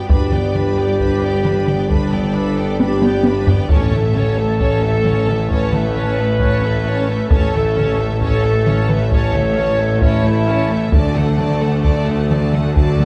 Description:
cinematic, epic orchestral film score; 66 BPM; 4/4; straight; A4 = 440 Hz
warm symphonic violin section; melody; 0.0-13.1 s; E5 to B5; -33 LUFS; equal
warm chamber violin section; second line; 0.0-13.1 s; A4 to D5; -28 LUFS; equal
rich studio viola section; accompaniment; 0.0-13.1 s; F#3 to D4; -29 LUFS; equal
warm French horn section; sustained chords; 0.0-13.1 s; A3 to C#5; -23 LUFS; equal
rich studio double bass section; bass; 0.0-13.1 s; G1 to D2; -25 LUFS; equal
warm studio cello section; bass; 0.0-13.1 s; G2 to D3; -25 LUFS; equal
warm tuba; bass; 0.1-13.1 s; G1 to D2; -26 LUFS; equal
taiko ensemble; drums; 0.1-13.1 s; -21 LUFS; equal
wet scoring stage reverb, RT60 2.0 s; heard from further back in the room; -16 LUFS; mono
0.0-13.1 A section
drum fill 2.8-3.7
0.0 G; 3.7 A; 10.9 D
| 0.10 1.00 1.90 2.79 | 3.69 4.60 5.50 6.40 | 7.30 8.21 9.11 10.02 | 10.93 11.84 12.77

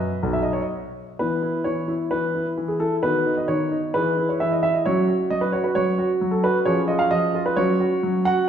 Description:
classical-period piano sonatina; 132 BPM; 4/4; rubato; E major; A4 = 440 Hz
warm grand piano; solo; 0.0-8.5 s; B1 to F#5; -20 LUFS; equal
wet recital hall reverb, RT60 1.8 s; heard from further back in the room; -20 LUFS; side -8 dB against mid
0.0-1.2 A section; 1.2-8.5 B section
0.0 B; 1.2 E5; 3.0 B/D#; 3.9 E; 4.9 F#5; 6.7 C#/E#; 7.6 F#5
0.23 0.71 | 1.19 1.66 2.12 2.58 | 3.03 3.49 3.95 4.41 | 4.86 5.31 5.75 6.21 | 6.66 7.11 7.57 8.02 | 8.48

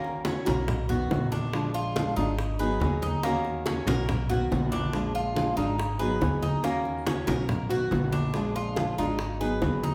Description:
latin, Cuban son and guajira; 141 BPM; 4/4; straight; Eb minor; A4 = 440 Hz
nylon-string guitar; accompaniment; 0.0-9.9 s; Eb3 to Ab4; -32 LUFS; equal
Cuban tres; arpeggios; 0.0-9.9 s; Bb3 to Cb5; -35 LUFS; equal
bongos; percussion; 0.0-9.9 s; -38 LUFS; equal
congas; percussion; 0.0-9.9 s; -34 LUFS; equal
upright bass; bass; 0.5-9.9 s; Ab1 to Eb2; -34 LUFS; equal
wet large studio reverb, RT60 1.2 s; band playing live in one room; -27 LUFS; mono
0.0-9.9 A section
0.0 Ebm7; 0.7 Bmaj7; 1.5 Bb7; 2.4 Abm7; 3.2 Ebm7; 4.1 Bmaj7; 4.9 Bb7; 5.8 Abm7; 6.6 Ebm7; 7.5 Bmaj7; 8.3 Bb7; 9.2 Abm7
0.25 0.67 1.10 | 1.53 1.95 2.38 2.80 | 3.23 3.66 4.08 4.51 | 4.93 5.36 5.79 6.21 | 6.64 7.06 7.49 7.92 | 8.34 8.77 9.19 9.62

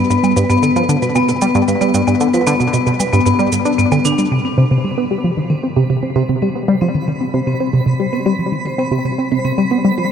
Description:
ambient, sequencer-driven space music; 114 BPM; 4/4; straight; A4 = 442 Hz
vibraphone with hard mallets; arpeggios; 0.0-10.0 s; B3 to C5; -18 LUFS; left 3 dB; auto-pan, ping-pong delay
tight sequenced synth; riff; 0.0-10.0 s; G2 to D4; -15 LUFS; right 1 dB; chorus, ping-pong delay
shaker and woodblock; percussion; 0.1-4.3 s; -27 LUFS; right 3 dB; ping-pong delay
twinkling granular texture; texture; 5.2-10.1 s; B5; -29 LUFS; right 5 dB; built-in reverb
wet huge ambient reverb, RT60 8.4 s; -13 LUFS; side -8 dB against mid
0.0-4.3 A section; 4.3-10.1 B section
fade-in on vibraphone 4.3-10.1; fade-in on synth texture 4.3-10.1
0.0 G; 4.3 N.C.
| 0.10 0.63 1.16 1.68 | 2.21 2.74 3.26 3.79 | 4.32 4.84 5.37 5.89 | 6.42 6.95 7.47 8.00 | 8.53 9.05 9.58 10.11

